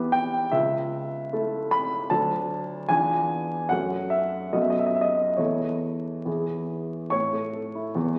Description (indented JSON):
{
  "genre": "classical, romantic character piece for solo piano",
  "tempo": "68-77 BPM",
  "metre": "2/4",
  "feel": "rubato",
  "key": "A major",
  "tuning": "A4 = 440 Hz",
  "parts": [
    { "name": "warm baby grand piano", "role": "solo", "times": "0.0-8.2 s", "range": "C#2 to C#6", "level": "-26 LUFS", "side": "equal", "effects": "none" }
  ],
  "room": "wet recital hall reverb, RT60 1.6 s",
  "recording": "very old 78 rpm record, vinyl crackle",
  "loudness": "-26 LUFS",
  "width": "mono",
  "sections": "0.0-7.1 A section; 7.1-8.2 B section",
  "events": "none",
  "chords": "0.0 Em; 0.5 A/C#; 2.1 D; 2.9 E7b9; 3.7 F#m; 4.5 B7/F#; 5.4 A/E; 6.3 E; 7.1 A"
}